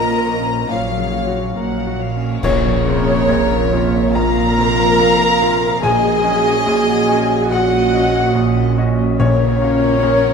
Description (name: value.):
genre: cinematic, emotional film score for orchestra.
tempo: 71 BPM.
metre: 4/4.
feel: rubato.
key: unclear.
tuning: A4 = 440 Hz.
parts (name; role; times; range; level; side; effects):
warm symphonic violin section; melody; 0.0-10.3 s; Bb4 to Bb5; -25 LUFS; left 4 dB; none.
mellow silver concert flute; second line; 0.0-10.3 s; Db5 to Bb5; -21 LUFS; left 2 dB; none.
warm chamber violin section; second line; 0.0-10.3 s; Db5 to Bb5; -23 LUFS; right 2 dB; none.
clear baby grand piano; accompaniment; 0.0-10.3 s; Bb1 to Bb5; -22 LUFS; equal; none.
dark symphonic viola section; accompaniment; 0.0-10.3 s; Db3 to Bb4; -21 LUFS; right 1 dB; none.
mellow French horn section; sustained chords; 0.0-10.3 s; Gb3 to Db5; -22 LUFS; left 2 dB; none.
concert harp; arpeggios; 0.0-10.3 s; Bb2 to F6; -25 LUFS; left 7 dB; none.
dark symphonic double bass section; bass; 0.0-10.3 s; Bb1; -22 LUFS; right 4 dB; none.
warm symphonic cello section; bass; 0.0-10.3 s; Bb2; -24 LUFS; right 8 dB; none.
clash cymbals and concert bass drum; percussion; 2.4-4.1 s; none; -27 LUFS; left 1 dB; none.
timpani; percussion; 2.4-10.3 s; Bb2; -24 LUFS; left 2 dB; none.
room: moderate scoring stage reverb, RT60 1.8 s.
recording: none.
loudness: -13 LUFS.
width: side -6 dB against mid.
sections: 0.0-2.4 A section; 2.4-10.3 B section.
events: band accent 2.4-3.3.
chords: 0.0 Bbmadd9; 0.7 Gbmaj7/Bb; 5.8 Ab7sus4/Bb; 9.2 Gbmaj7/Bb.